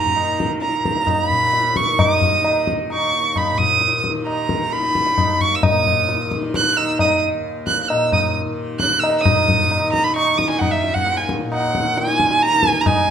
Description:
indian classical, Hindustani; 132 BPM; 4/4; straight; Eb raga bhairavi; A4 = 440 Hz
rich violin; melody; 0.0-13.1 s; Fb5 to Gb6+20c; -18 LUFS; right 2 dB
tanpura; drone; 0.0-13.1 s; Eb2 to Eb3; -25 LUFS; left 1 dB
tabla; percussion; 0.1-13.0 s; -20 LUFS; left 2 dB
moderate recital hall reverb, RT60 1.4 s; dark, warm production; -16 LUFS; side -8 dB against mid
0.0-9.3 A section; 9.3-13.1 B section

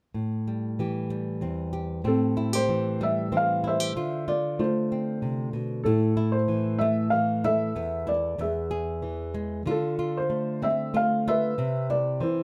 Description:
folk; 95 BPM; 3/4; straight; A minor; A4 = 440 Hz
nylon-string guitar; accompaniment; 0.1-12.4 s; E2 to G#4; -30 LUFS; equal
felt-muted upright piano; melody; 2.1-12.4 s; C4 to F5; -29 LUFS; equal
moderate small room reverb, RT60 0.5 s; close, detailed microphones; -27 LUFS; mono
0.1-2.0 A section; 2.0-12.4 B section
0.1 Am7; 4.0 Dm7; 5.9 A5; 7.8 Esus4; 8.4 E; 9.7 Dm7; 11.6 Cmaj7

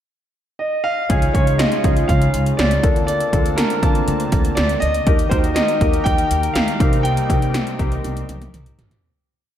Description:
1980s-style pop; 121 BPM; 4/4; straight; A4 = 435 Hz
warm baby grand piano; melody; 0.6-8.7 s; Bb4 to G5; -22 LUFS; right 1 dB
warm concert grand piano; accompaniment; 1.1-9.1 s; C3 to A5; -24 LUFS; left 2 dB; lush chorus
brassy analog pad; sustained chords; 1.1-9.0 s; C3 to A5; -27 LUFS; equal; chorus
upright bass; bass; 1.1-9.0 s; Bb1 to Eb2; -22 LUFS; equal
80s electronic pad drums; drums; 1.1-9.0 s; hi-hat, kick drum, snare drum, toms; -19 LUFS; equal; gated reverb on snare and toms, overdrive
moderate lush hall reverb, RT60 1.5 s, small room ambience; dreamy mix soaked in reverb; -15 LUFS; side -10 dB against mid
0.0-1.1 pickup bar; 1.1-9.0 verse
fade-out 7.0-9.0; drum fill 8.0-9.0
0.0 N.C.; 1.1 Dbadd9; 2.8 Bbmaj7/D; 5.1 Eb; 6.8 Cm7

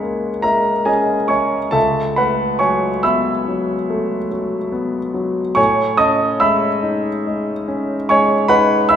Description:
classical, impressionist solo piano; 47 BPM (dotted quarters); 9/8; rubato; A4 = 442 Hz
clear concert grand piano; solo; 0.0-9.0 s; C#2 to E6; -15 LUFS; equal
wet recital hall reverb, RT60 1.7 s; recorded in a church or concert hall; -15 LUFS; side -9 dB against mid
0.0-9.0 A section
0.0 C#m6; 1.8 B9sus4/C#; 5.6 Amaj7#11

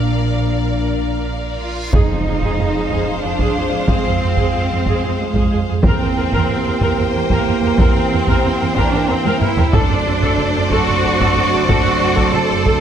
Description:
cinematic, epic orchestral film score; 92 BPM; 3/4; straight; A4 = 440 Hz
warm symphonic violin section; melody; 0.0-12.8 s; D5 to G5; -25 LUFS; left 3 dB
clear symphonic violin section; second line; 0.0-12.8 s; C5 to D5; -26 LUFS; left 3 dB
rich symphonic viola section; accompaniment; 0.0-12.8 s; Ab4 to Bb4; -24 LUFS; right 1 dB
mellow French horn section; sustained chords; 0.0-12.8 s; C4 to Ab4; -26 LUFS; left 6 dB
rich chamber double bass section; bass; 0.0-12.7 s; F#1 to F2; -21 LUFS; right 4 dB
rich symphonic cello section; bass; 0.0-12.8 s; Bb2 to A4; -21 LUFS; right 3 dB
reverse cymbal and impact; sound effects; 1.6-3.9 s; -28 LUFS; equal
clear trombone section; sustained chords; 1.9-12.8 s; E3 to Bb3; -24 LUFS; right 5 dB
taiko ensemble; drums; 1.9-12.8 s; -19 LUFS; equal
moderate concert hall reverb, RT60 2.1 s; -14 LUFS; side -9 dB against mid
0.0-1.9 A section; 1.9-12.8 B section
reverse cymbal 1.6-1.9; impact 1.9-3.9; drum fill 9.3-9.8
0.0 Bb; 1.9 Fm7; 5.9 C7/E; 9.8 D7/F#

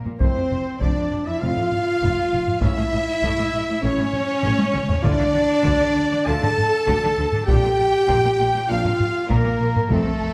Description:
cinematic, epic orchestral film score; 99 BPM; 4/4; straight; A4 = 440 Hz
rich symphonic cello section; bass; 0.1-10.3 s; F2 to D3; -31 LUFS; equal
taiko ensemble; drums; 0.1-10.3 s; -27 LUFS; equal
warm symphonic violin section; melody; 0.2-10.3 s; A4 to A5; -34 LUFS; equal
mellow large flute ensemble; second line; 0.2-10.3 s; A4 to A5; -34 LUFS; equal
warm symphonic violin section; second line; 0.2-10.3 s; A4 to A5; -35 LUFS; equal
warm symphonic viola section; accompaniment; 0.2-10.3 s; A3 to A4; -33 LUFS; equal
mellow French horn section; sustained chords; 0.2-10.3 s; A3 to A4; -25 LUFS; equal
warm trombone section; sustained chords; 0.2-10.1 s; F2 to F4; -35 LUFS; equal
warm trumpet; stabs; 0.2-10.3 s; A4 to A5; -30 LUFS; equal
warm symphonic double bass section; bass; 0.2-10.3 s; F1 to D2; -29 LUFS; equal
moderate scoring stage reverb, RT60 2.0 s; -20 LUFS; mono
0.0-10.3 A section
drum fill 4.4-5.0
0.2 F; 2.6 A; 5.0 Dm; 7.5 Bb

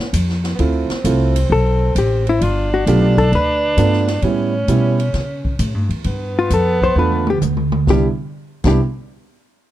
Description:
jazz, small-group swing and bop; 132 BPM; 4/4; swing 68% on 8ths; C major; A4 = 444 Hz
mellow tenor saxophone; second line; 0.0-8.8 s; G3 to D4; -23 LUFS; right 2 dB
upright bass; bass; 0.1-8.8 s; G1 to C#3; -18 LUFS; equal
open jazz drum kit; drums; 0.1-8.7 s; crash cymbal, hi-hat, kick drum, ride cymbal, snare drum, toms; -24 LUFS; right 1 dB
warm concert grand piano; accompaniment; 0.6-8.8 s; G3 to F4; -20 LUFS; right 6 dB
hollow-body jazz guitar; melody; 1.5-8.8 s; E4 to C5; -19 LUFS; left 4 dB
studio reverb; -14 LUFS; side -13 dB against mid
0.6-7.9 A section; 7.9-9.7 B section
drum fill 7.0-7.9
0.0 Aaug (rootless); 0.6 Dm7; 2.4 G7; 4.2 A7; 6.0 G7; 7.9 Cmaj7

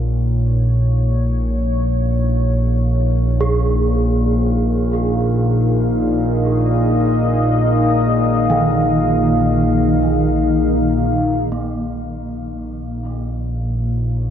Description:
dark ambient drone; free time; Bb minor; A4 = 440 Hz
deep dark ambient pad; sustained chords; 0.0-14.3 s; Bb3 to F5; -20 LUFS; left 1 dB; chorus, built-in reverb
analog drone; drone; 0.0-14.3 s; Bb1 to Bb2; -17 LUFS; equal; chorus
gamelan-type bronze metallophone; arpeggios; 3.4-14.3 s; Eb3 to Ab4; -25 LUFS; right 3 dB; diffuse ambient delay
wet cathedral reverb, RT60 5.8 s; cassette tape; -15 LUFS; side -9 dB against mid
0.0-11.5 A section; 11.5-14.3 B section
fade-in on ambient pad 0.0-11.5
0.0 Bbm

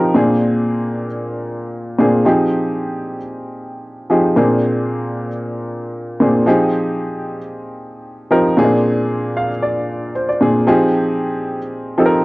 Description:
disco; 114 BPM; 4/4; straight; F dorian; A4 = 441 Hz
warm baby grand piano; solo; 0.0-12.2 s; Bb2 to F5; -15 LUFS; equal
light reverb; home recording on cassette, nothing above 10.8 kHz; -15 LUFS; side -21 dB against mid
0.0-10.7 A section; 10.7-12.2 B section
grand piano fill 9.1-10.7
0.2 Bb9; 2.3 Fm7; 4.4 Bb9; 6.5 Fm7; 8.6 Bb9; 10.7 Fm7

